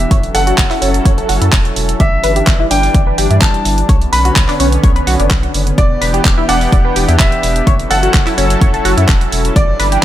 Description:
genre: progressive house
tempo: 127 BPM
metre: 4/4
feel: straight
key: E dorian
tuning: A4 = 441 Hz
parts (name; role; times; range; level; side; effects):
- clear grand piano; melody; 0.0-10.0 s; D5 to B5; -19 LUFS; left 1 dB; vintage 12-bit sampler grit, tape echo
- lush unison pad; sustained chords; 0.0-10.0 s; D3 to A4; -19 LUFS; equal; chorus, sidechain pumping
- round analog bass; bass; 0.0-10.0 s; E1 to G2; -16 LUFS; equal; tube saturation, sidechain pumping
- house drum kit; drums; 0.0-10.0 s; handclaps, hi-hat; -18 LUFS; right 2 dB; none
- tight sequenced synth; arpeggios; 0.1-10.0 s; C#4 to D5; -19 LUFS; equal; chorus, phaser, sidechain pumping, tape echo
- electronic kick drum; drums; 0.1-9.7 s; none; -12 LUFS; equal; none
room: little or no reverb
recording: none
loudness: -10 LUFS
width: side -12 dB against mid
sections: 0.0-10.0 A section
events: filter sweep on analog synth pad 0.0-10.0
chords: 0.1 F#m7; 2.0 Em7/G; 3.9 Bmadd9; 5.8 Em7; 7.7 F#m7

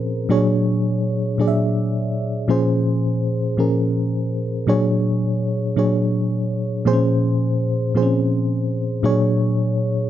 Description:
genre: R&B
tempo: 55 BPM (dotted quarters)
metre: 6/8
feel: straight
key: unclear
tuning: A4 = 440 Hz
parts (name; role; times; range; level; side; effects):
- FM electric piano with auto-pan; solo; 0.0-10.1 s; Bb2 to E5; -18 LUFS; equal; none
room: moderate booth ambience, RT60 0.2 s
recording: dry, close 1970s-style studio recording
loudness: -18 LUFS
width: side -12 dB against mid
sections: 0.0-10.1 A section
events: none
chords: 0.3 Bb7alt; 2.5 Bbm7; 4.7 Bb7alt; 6.8 Bbm7; 9.0 Bb7alt

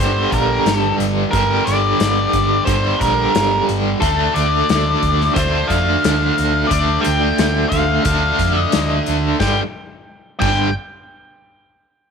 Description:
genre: classic rock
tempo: 89 BPM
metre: 4/4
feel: straight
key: G minor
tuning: A4 = 444 Hz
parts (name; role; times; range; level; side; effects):
- octave-fuzz lead guitar; melody; 0.0-10.7 s; A4 to G5; -20 LUFS; left 2 dB; distortion
- overdriven electric guitar; riff; 0.0-10.7 s; G2 to D4; -18 LUFS; right 1 dB; tremolo
- hollow-body short-scale picked electric bass; bass; 0.0-10.7 s; G1 to F2; -21 LUFS; right 1 dB; none
- big rock drum kit; drums; 0.3-10.6 s; crash cymbal, hi-hat, kick drum, snare drum; -23 LUFS; left 3 dB; none
room: light reverb, small room ambience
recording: 1960s-style stereo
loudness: -14 LUFS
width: side -6 dB against mid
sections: 0.0-9.4 A section; 9.4-12.1 B section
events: none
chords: 0.0 Gm; 4.0 Dm; 9.4 G5

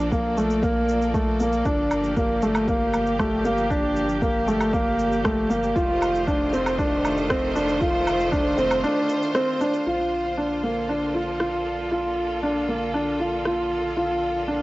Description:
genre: piano and strings electronica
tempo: 117 BPM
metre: 4/4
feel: straight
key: Bb major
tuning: A4 = 440 Hz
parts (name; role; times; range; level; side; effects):
- bright studio string section; sustained chords; 0.0-14.6 s; D3 to D5; -29 LUFS; right 1 dB; sidechain pumping
- felt-muted upright piano; riff; 0.0-14.6 s; A3 to F4; -22 LUFS; equal; analog delay
- round analog bass; bass; 0.0-14.6 s; F1 to Bb1; -34 LUFS; equal; sidechain pumping
- electronic kick drum; drums; 0.1-8.4 s; none; -28 LUFS; equal; cassette tape
- electronic shaker, woodblock and rim click; drums; 0.1-13.6 s; none; -29 LUFS; right 1 dB; cassette tape
room: light reverb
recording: home recording on cassette, nothing above 7.7 kHz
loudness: -20 LUFS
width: side -18 dB against mid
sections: 0.0-9.9 A section; 9.9-14.6 B section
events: none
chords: 0.0 Bbmaj7; 1.7 Gm7; 5.8 F7; 9.9 Bbmaj7

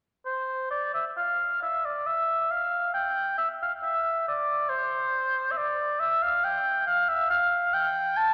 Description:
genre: classical, baroque-style fantasia for unaccompanied oboe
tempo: 69 BPM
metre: 3/4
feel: rubato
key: C major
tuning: A4 = 440 Hz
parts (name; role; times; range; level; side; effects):
- mellow oboe; solo; 0.3-8.3 s; C5 to A5; -27 LUFS; equal; none
room: wet church reverb, RT60 3.3 s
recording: none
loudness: -27 LUFS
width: mono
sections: 0.3-8.3 A section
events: none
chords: none

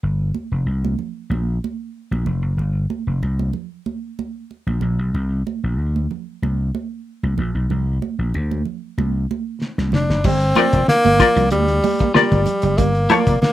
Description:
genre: funk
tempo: 94 BPM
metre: 4/4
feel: straight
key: G minor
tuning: A4 = 443 Hz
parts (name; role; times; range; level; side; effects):
- vintage slap bass; bass; 0.0-13.4 s; F1 to D2; -19 LUFS; equal; none
- congas; percussion; 0.3-13.5 s; none; -27 LUFS; right 8 dB; none
- cloth-damped thuddy drum kit; drums; 9.6-13.5 s; crash cymbal, hi-hat, kick drum, snare drum; -21 LUFS; left 1 dB; none
- breathy tenor saxophone; melody; 10.0-13.5 s; G3 to D4; -18 LUFS; equal; none
- clean electric guitar; riff; 10.3-13.3 s; F3 to Bb3; -24 LUFS; right 7 dB; none
- semi-hollow electric guitar; accompaniment; 10.6-13.3 s; F4 to D5; -17 LUFS; left 5 dB; tremolo
room: little or no reverb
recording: rough home demo mix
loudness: -17 LUFS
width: side -14 dB against mid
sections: 0.0-10.2 A section; 10.2-13.5 B section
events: drum fill 9.6-10.2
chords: 0.0 Gm7; 5.1 Csus2; 10.2 Gm7

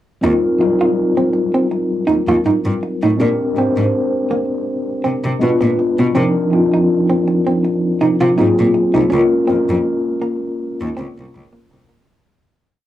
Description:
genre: R&B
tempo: 81 BPM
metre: 4/4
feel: swing 54% on 16ths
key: Eb major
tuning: A4 = 440 Hz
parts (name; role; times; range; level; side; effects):
- hollow-body jazz guitar; second line; 0.2-12.0 s; Bb3 to F4; -18 LUFS; right 2 dB; cassette tape, plate reverb
- mellow tine electric piano; accompaniment; 0.2-12.1 s; F3 to C5; -15 LUFS; left 1 dB; medium stereo tremolo, cassette tape, plate reverb
- bright cello; bass; 0.2-11.8 s; C2 to C3; -20 LUFS; equal; none
room: wet booth ambience, RT60 0.2 s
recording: home recording on cassette, small room ambience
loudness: -14 LUFS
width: side -13 dB against mid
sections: 0.2-12.1 verse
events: fade-out 9.1-12.1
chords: 0.2 Eb69; 3.2 Bb13; 5.4 Bdim7; 6.1 Cm11; 8.4 Ab13; 9.1 Db6

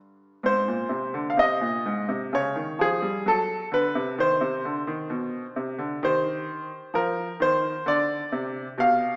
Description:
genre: classical, baroque-style suite movement for grand piano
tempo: 65 BPM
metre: 3/4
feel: rubato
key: C minor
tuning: A4 = 440 Hz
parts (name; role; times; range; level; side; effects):
- bright baby grand piano; solo; 0.0-9.2 s; G2 to F5; -26 LUFS; equal; none
room: wet recital hall reverb, RT60 1.6 s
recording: recorded in a church or concert hall, small speaker sound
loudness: -26 LUFS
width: mono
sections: 0.4-9.2 A section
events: none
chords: 0.4 Ab; 2.3 Db; 3.2 Cdim7; 5.1 Bm; 6.0 Cm/Eb; 7.9 Csus2

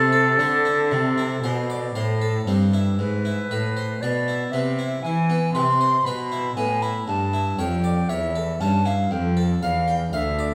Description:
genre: classical, baroque-style sonata movement with continuo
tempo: 59 BPM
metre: 4/4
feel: straight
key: A minor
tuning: A4 = 440 Hz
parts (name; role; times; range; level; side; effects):
- silver concert flute; melody; 0.0-10.5 s; A4 to C6; -26 LUFS; equal; none
- harpsichord; accompaniment; 0.0-10.5 s; D2 to G5; -27 LUFS; equal; none
- rich cello; bass; 0.0-10.5 s; D2 to E3; -27 LUFS; equal; none
room: wet recital hall reverb, RT60 1.4 s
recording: none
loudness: -22 LUFS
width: mono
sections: 0.0-3.0 A section; 3.0-10.5 A section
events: none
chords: 0.0 Am; 3.0 E/G#; 7.1 A7; 9.1 Dm

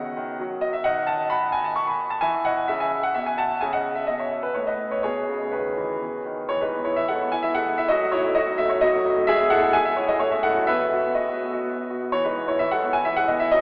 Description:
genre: classical-period piano sonatina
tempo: 129 BPM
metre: 3/4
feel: rubato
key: E major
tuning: A4 = 440 Hz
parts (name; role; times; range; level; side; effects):
- clear grand piano; solo; 0.0-13.6 s; A2 to C#6; -20 LUFS; equal; none
room: wet cathedral reverb, RT60 4.8 s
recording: telephone sound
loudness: -20 LUFS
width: side -31 dB against mid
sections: 0.0-6.5 A section; 6.5-13.6 B section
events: none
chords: 0.0 B; 0.9 B13/D#; 2.2 E5; 3.6 B69; 4.5 Aadd9; 5.0 E/B; 6.0 B; 6.5 E; 7.9 D#dim/F#; 9.3 E/G#; 10.2 F#m7/A; 10.7 B; 12.1 E

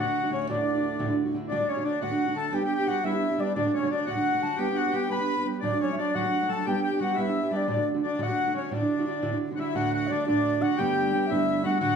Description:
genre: celtic folk, Celtic jig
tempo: 116 BPM (dotted quarters)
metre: 6/8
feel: straight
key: D major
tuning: A4 = 440 Hz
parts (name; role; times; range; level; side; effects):
- baroque flute; melody; 0.0-12.0 s; C#5 to B5; -30 LUFS; equal; none
- accordion; second line; 0.0-12.0 s; C#4 to B4; -30 LUFS; left 5 dB; none
- fingerpicked steel-string acoustic guitar; accompaniment; 0.0-12.0 s; D2 to G4; -27 LUFS; right 3 dB; none
- pedal harmonium; drone; 0.0-1.5 s; D2 to A2; -37 LUFS; left 3 dB; none
room: wet large studio reverb, RT60 0.8 s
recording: band playing live in one room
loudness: -24 LUFS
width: side -6 dB against mid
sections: 0.0-1.5 A section; 1.5-9.8 A section; 9.8-12.0 B section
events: none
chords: 0.5 Dadd9; 1.5 D; 2.5 G; 3.6 D; 4.6 G; 5.6 D; 6.7 G; 7.7 D; 8.7 Dadd9; 9.8 D; 10.8 Gadd9

